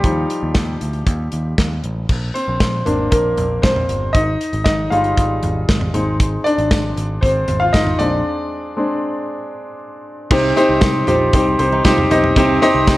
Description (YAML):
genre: piano-driven pop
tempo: 117 BPM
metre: 4/4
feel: straight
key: unclear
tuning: A4 = 444 Hz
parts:
  - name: bright concert grand piano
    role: accompaniment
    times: 0.0-13.0 s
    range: C3 to F5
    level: -17 LUFS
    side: left 1 dB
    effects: none
  - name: picked electric bass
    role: bass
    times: 0.0-13.0 s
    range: G1 to Eb2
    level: -22 LUFS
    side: equal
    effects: none
  - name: modern studio drum kit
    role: drums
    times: 0.0-13.0 s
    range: crash cymbal, hi-hat, kick drum, snare drum, toms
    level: -19 LUFS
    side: equal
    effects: none
  - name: tambourine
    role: percussion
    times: 6.7-13.0 s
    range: none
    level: -36 LUFS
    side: right 7 dB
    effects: none
  - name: picked steel-string acoustic guitar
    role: riff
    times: 10.3-12.9 s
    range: C4 to G4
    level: -23 LUFS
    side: right 6 dB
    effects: none
room: light reverb, small room ambience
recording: worn, warbling old tape, cassette tape, warbly pitch drift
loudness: -14 LUFS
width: side -17 dB against mid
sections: 0.0-2.1 A section; 2.1-10.3 B section; 10.3-13.0 C section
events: grand piano solo 0.0-2.1, 2.1-10.3; break 8.3-10.3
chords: 0.0 Ebadd9; 2.1 Bbadd9; 4.1 Fm7; 5.9 Ab; 8.0 Bb7 (rootless); 10.3 Cm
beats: | 0.04 0.55 1.06 1.58 | 2.09 2.61 3.12 3.63 | 4.15 4.66 5.17 5.69 | 6.20 6.71 7.23 7.74 | 8.26 8.77 9.28 9.80 | 10.31 10.82 11.34 11.85 | 12.37 12.88